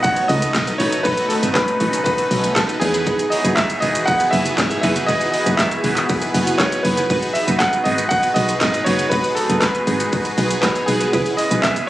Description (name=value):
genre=dance-pop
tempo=119 BPM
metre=4/4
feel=straight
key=unclear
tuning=A4 = 440 Hz
part: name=clear concert grand piano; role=melody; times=0.0-11.9 s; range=G#4 to F#5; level=-20 LUFS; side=equal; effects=none
part: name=big bright polysynth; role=accompaniment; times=0.0-11.8 s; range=B3 to C#5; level=-23 LUFS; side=right 1 dB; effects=phaser, sidechain pumping
part: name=lush unison pad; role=sustained chords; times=0.0-11.9 s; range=C#3 to G#4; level=-26 LUFS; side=equal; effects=chorus, phaser, sidechain pumping
part: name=direct-recorded clean electric guitar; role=riff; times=0.0-11.8 s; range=D#4 to B4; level=-28 LUFS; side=right 3 dB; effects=ensemble chorus
part: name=pop drum kit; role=drums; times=0.0-11.9 s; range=handclaps, hi-hat, kick drum, shaker, snare drum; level=-22 LUFS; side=equal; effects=none
part: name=solid FM bass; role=bass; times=0.3-11.6 s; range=E1 to E2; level=-21 LUFS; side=equal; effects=sidechain pumping
part: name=group handclap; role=percussion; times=7.6-11.8 s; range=none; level=-34 LUFS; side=left 2 dB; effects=none
room=light reverb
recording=recorded on a phone in the room, club reverb, compression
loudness=-16 LUFS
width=side -15 dB against mid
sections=0.0-11.9 A section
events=none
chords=0.0 B7; 2.8 Emaj7; 7.1 G#m7; 11.1 C#m7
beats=0.04 0.55 | 1.05 1.55 2.06 2.56 | 3.07 3.57 4.08 4.58 | 5.08 5.59 6.09 6.60 | 7.10 7.60 8.11 8.61 | 9.12 9.62 10.12 10.63 | 11.13 11.64